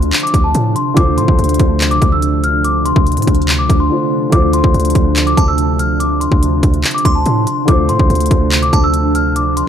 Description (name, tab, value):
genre	hip hop, trap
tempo	143 BPM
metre	4/4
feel	half-time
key	D minor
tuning	A4 = 440 Hz
part	celesta	melody	0.0-9.7 s	A5 to F6	-18 LUFS	left 2 dB	none
part	dark baby grand piano	accompaniment	0.0-9.7 s	D3 to C5	-20 LUFS	right 1 dB	none
part	glassy FM pad	sustained chords	0.0-9.7 s	C3 to D4	-19 LUFS	equal	ensemble chorus, built-in reverb
part	hard-hitting 808-style bass	bass	0.0-9.6 s	D2 to A2	-16 LUFS	equal	none
part	trap drum kit	drums	0.0-9.7 s	handclaps, hi-hat, kick drum	-15 LUFS	equal	overdrive
part	delicate synth tine bell	second line	5.4-9.3 s	A5 to C6	-25 LUFS	equal	chorus, phaser, ping-pong delay
room	little or no reverb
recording	dark, warm production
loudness	-11 LUFS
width	side -9 dB against mid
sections	0.0-9.7 A section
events	break 3.9-4.3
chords	0.0 Dm7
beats	0.13 0.55 | 0.97 1.39 1.81 2.23 | 2.65 3.06 3.48 3.90 | 4.32 4.74 5.16 5.58 | 6.00 6.42 6.84 7.26 | 7.68 8.10 8.52 8.94 | 9.36